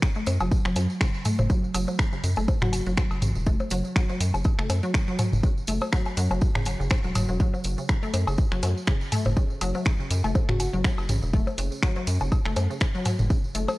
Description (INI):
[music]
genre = minimal techno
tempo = 122 BPM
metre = 4/4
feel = swing 55% on 16ths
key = F# minor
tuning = A4 = 438 Hz
[part]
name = electronic kick drum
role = drums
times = 0.0-13.4 s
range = none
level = -24 LUFS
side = equal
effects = none
[part]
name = punchy analog drum machine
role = drums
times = 0.0-13.7 s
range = finger snaps, hi-hat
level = -32 LUFS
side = equal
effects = none
[part]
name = tambourine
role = percussion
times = 0.0-13.8 s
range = none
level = -40 LUFS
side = right 3 dB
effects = none
[part]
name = resonant blip pluck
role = riff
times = 0.2-13.6 s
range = C#3 to A3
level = -30 LUFS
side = equal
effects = chorus, sidechain pumping, analog delay
[part]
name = rubbery square bass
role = bass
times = 0.3-13.7 s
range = E1 to F#2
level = -27 LUFS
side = equal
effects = sidechain pumping
[part]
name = electronic percussion blips, cowbell, woodblock and toms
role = percussion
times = 0.3-13.8 s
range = none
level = -29 LUFS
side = left 1 dB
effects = none
[part]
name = soft struck synth lead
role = melody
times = 2.6-2.8, 10.5-10.7 s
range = F#4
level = -34 LUFS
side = left 2 dB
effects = chorus, tape echo
[sound]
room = little or no reverb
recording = dry, gritty hardware recording, cassette tape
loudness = -22 LUFS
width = side -20 dB against mid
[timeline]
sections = 0.0-13.8 A section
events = none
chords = none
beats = 0.02 0.52 1.01 | 1.50 1.99 2.48 2.97 | 3.47 3.96 4.45 4.94 | 5.43 5.92 6.42 6.91 | 7.40 7.89 8.38 8.88 | 9.37 9.86 10.35 10.84 | 11.34 11.83 12.32 12.81 | 13.30